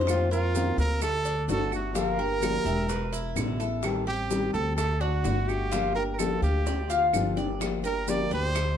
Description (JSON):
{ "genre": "latin, Cuban son and guajira", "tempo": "127 BPM", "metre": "4/4", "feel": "straight", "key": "G minor", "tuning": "A4 = 442 Hz", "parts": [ { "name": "nylon-string guitar", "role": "accompaniment", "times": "0.0-8.6 s", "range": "B2 to G4", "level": "-31 LUFS", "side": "left 3 dB", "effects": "none" }, { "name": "Cuban tres", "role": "arpeggios", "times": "0.0-8.8 s", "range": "D4 to F5", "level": "-31 LUFS", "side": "left 1 dB", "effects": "none" }, { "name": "upright bass", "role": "bass", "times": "0.0-8.8 s", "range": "E1 to F2", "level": "-30 LUFS", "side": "equal", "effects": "none" }, { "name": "bongos", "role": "percussion", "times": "0.0-8.8 s", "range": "none", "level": "-35 LUFS", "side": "left 5 dB", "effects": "none" }, { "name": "clear trumpet", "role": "melody", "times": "0.1-8.8 s", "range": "F4 to D5", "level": "-31 LUFS", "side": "right 3 dB", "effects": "none" }, { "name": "claves", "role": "percussion", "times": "0.1-8.8 s", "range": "none", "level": "-39 LUFS", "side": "right 10 dB", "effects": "none" }, { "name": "maracas", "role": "percussion", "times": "0.1-8.8 s", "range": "none", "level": "-41 LUFS", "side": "right 7 dB", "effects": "none" } ], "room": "moderate studio reverb, RT60 0.6 s", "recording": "dark, warm production", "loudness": "-24 LUFS", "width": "side -9 dB against mid", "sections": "0.0-7.6 A section; 7.6-8.8 B section", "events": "drum fill 6.7-7.6", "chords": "0.1 F7sus4; 1.0 D; 2.0 Gm7; 2.9 E7; 3.8 Am7b5; 4.8 D; 5.7 Gm7", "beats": "| 0.07 0.55 1.02 1.49 | 1.96 2.43 2.90 3.37 | 3.84 4.31 4.78 5.25 | 5.72 6.20 6.67 7.14 | 7.61 8.08 8.55" }